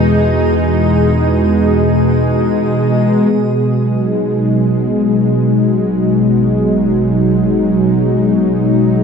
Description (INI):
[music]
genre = ambient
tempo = free time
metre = none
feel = none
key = G# minor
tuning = A4 = 442 Hz
[part]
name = warm analog pad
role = sustained chords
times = 0.0-9.0 s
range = B2 to G#4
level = -12 LUFS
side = equal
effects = chorus
[part]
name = round analog bass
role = bass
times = 0.0-9.0 s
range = G#1 to E2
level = -23 LUFS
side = equal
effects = none
[part]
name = bowed-like drone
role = drone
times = 0.0-9.0 s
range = G#3 to D#4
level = -21 LUFS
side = right 3 dB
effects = built-in reverb
[part]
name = drifting glass-harmonics texture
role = texture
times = 0.0-3.4 s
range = D#6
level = -37 LUFS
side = equal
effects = chorus, built-in reverb
[sound]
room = wet concert hall reverb, RT60 2.2 s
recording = dark, warm production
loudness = -11 LUFS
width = side -6 dB against mid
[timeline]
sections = 0.0-3.3 A section; 3.3-9.0 B section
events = none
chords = 0.0 E; 3.3 G#m7